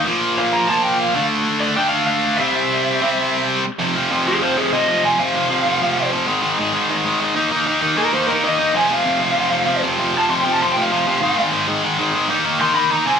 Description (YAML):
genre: punk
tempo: 194 BPM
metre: 4/4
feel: straight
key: unclear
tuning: A4 = 440 Hz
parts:
  - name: tight distorted guitar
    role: riff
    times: 0.0-13.2 s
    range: F2 to Eb4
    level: -17 LUFS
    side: equal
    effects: distortion
  - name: lead guitar through a small cranked amp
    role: melody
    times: 0.4-13.2 s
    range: Ab4 to C6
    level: -19 LUFS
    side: equal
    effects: overdrive
room: light reverb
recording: band playing live in one room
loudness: -15 LUFS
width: side -7 dB against mid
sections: 0.0-3.8 A section; 3.8-13.2 B section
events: half time 0.0-3.8; lead electric guitar solo 3.8-13.2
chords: 0.1 Bb5; 1.1 Dm; 2.4 C; 3.8 F5; 6.3 Ab5; 7.3 Eb5; 8.7 F5; 11.2 Ab5; 12.3 Eb5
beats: | 0.05 0.36 0.68 0.99 | 1.30 1.61 1.92 2.23 | 2.54 2.85 3.17 3.48 | 3.79 4.10 4.41 4.72 | 5.03 5.34 5.65 5.96 | 6.27 6.58 6.88 7.19 | 7.50 7.81 8.12 8.43 | 8.74 9.05 9.36 9.66 | 9.97 10.28 10.59 10.90 | 11.21 11.51 11.82 12.13 | 12.44 12.75 13.06